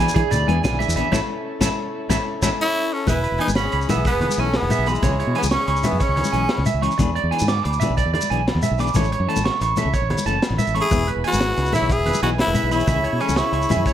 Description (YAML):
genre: highlife guitar band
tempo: 122 BPM (dotted quarters)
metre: 12/8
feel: straight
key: E major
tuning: A4 = 437 Hz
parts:
  - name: semi-hollow electric guitar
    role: accompaniment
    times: 0.0-13.8 s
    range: E3 to A4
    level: -29 LUFS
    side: left 7 dB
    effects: spring reverb
  - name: overdriven combo organ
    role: sustained chords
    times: 0.0-3.1, 10.9-13.9 s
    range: B3 to A4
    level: -31 LUFS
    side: left 2 dB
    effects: plate reverb
  - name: electric guitar at the edge of break-up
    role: arpeggios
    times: 0.0-13.9 s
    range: G#4 to D6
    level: -24 LUFS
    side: right 9 dB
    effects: spring reverb, tape echo
  - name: fingered electric bass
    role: bass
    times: 0.0-13.8 s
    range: E1 to E3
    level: -23 LUFS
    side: equal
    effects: none
  - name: crunchy breakbeat drum kit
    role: drums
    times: 0.0-13.9 s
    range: hi-hat, kick drum, snare drum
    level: -25 LUFS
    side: equal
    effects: none
  - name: congas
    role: percussion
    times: 0.0-13.8 s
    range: none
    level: -27 LUFS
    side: left 3 dB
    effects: none
  - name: shekere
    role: percussion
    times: 0.0-13.9 s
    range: none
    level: -28 LUFS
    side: left 1 dB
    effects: none
  - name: agogo bells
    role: percussion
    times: 0.3-13.9 s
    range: none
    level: -32 LUFS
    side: left 7 dB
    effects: none
  - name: raspy tenor saxophone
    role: melody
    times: 2.6-6.7, 10.8-13.9 s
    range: G#3 to G#4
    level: -23 LUFS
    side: equal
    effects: plate reverb
  - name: breathy trumpet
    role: second line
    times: 2.6-6.7, 10.8-13.9 s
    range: E4 to E5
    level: -31 LUFS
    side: left 6 dB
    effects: plate reverb
room: light reverb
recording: none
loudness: -18 LUFS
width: side -10 dB against mid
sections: 0.0-3.1 A section; 3.1-13.9 B section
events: band accent 1.1-3.1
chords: 0.0 E7; 1.1 A; 3.1 E; 5.0 C#m; 7.0 E7; 9.0 A; 10.9 E; 12.9 C#m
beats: 0.16 0.64 | 1.13 1.62 2.10 2.59 | 3.08 3.57 4.06 4.55 | 5.04 5.53 6.02 6.51 | 7.00 7.49 7.98 8.47 | 8.96 9.45 9.94 10.43 | 10.92 11.41 11.90 12.39 | 12.88 13.37 13.86